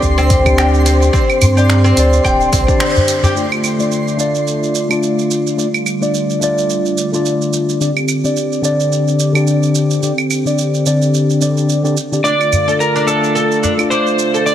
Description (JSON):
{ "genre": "organic downtempo", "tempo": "108 BPM", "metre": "4/4", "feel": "swing 56% on 16ths", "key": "D minor", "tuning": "A4 = 440 Hz", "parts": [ { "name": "mellow tine electric piano", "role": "accompaniment", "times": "0.0-14.5 s", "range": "D3 to D5", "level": "-17 LUFS", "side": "left 1 dB", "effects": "phaser, sidechain pumping, ping-pong delay" }, { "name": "warm analog pad", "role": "sustained chords", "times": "0.0-14.5 s", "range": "D3 to G4", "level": "-20 LUFS", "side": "equal", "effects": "chorus, sidechain pumping" }, { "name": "warm sub bass", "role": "bass", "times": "0.0-2.6 s", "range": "D1 to G2", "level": "-13 LUFS", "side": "equal", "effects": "tube saturation, sidechain pumping" }, { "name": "deep house drum kit", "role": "drums", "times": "0.0-14.5 s", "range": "claves, finger snaps, hi-hat, shaker", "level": "-22 LUFS", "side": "right 5 dB", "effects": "none" }, { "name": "electronic kick drum", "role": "drums", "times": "0.0-2.8 s", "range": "none", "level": "-16 LUFS", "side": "equal", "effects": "none" }, { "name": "twinkling granular texture", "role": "texture", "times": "0.0-3.4 s", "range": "C6", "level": "-27 LUFS", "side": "right 3 dB", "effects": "built-in reverb" }, { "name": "oud", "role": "arpeggios", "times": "0.2-3.4, 12.2-14.5 s", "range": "C4 to G5", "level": "-18 LUFS", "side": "left 1 dB", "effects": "vintage 12-bit sampler grit, ping-pong delay" }, { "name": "udu", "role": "percussion", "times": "0.3-3.3, 12.5-13.8 s", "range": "none", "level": "-17 LUFS", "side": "equal", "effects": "none" }, { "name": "electric slide guitar", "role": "melody", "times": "12.2-14.5 s", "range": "A4 to D5", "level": "-15 LUFS", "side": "right 1 dB", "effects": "ping-pong delay" } ], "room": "moderate lush hall reverb, RT60 3.1 s", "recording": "heavily compressed radio sound", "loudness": "-12 LUFS", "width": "side -10 dB against mid", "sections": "0.0-3.4 A section; 3.4-14.5 B section", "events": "filter sweep on tine electric piano 0.0-3.4; band accent 2.8", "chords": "0.0 Csus2/D; 3.4 Dm; 7.8 Csus2/D; 12.2 Dm" }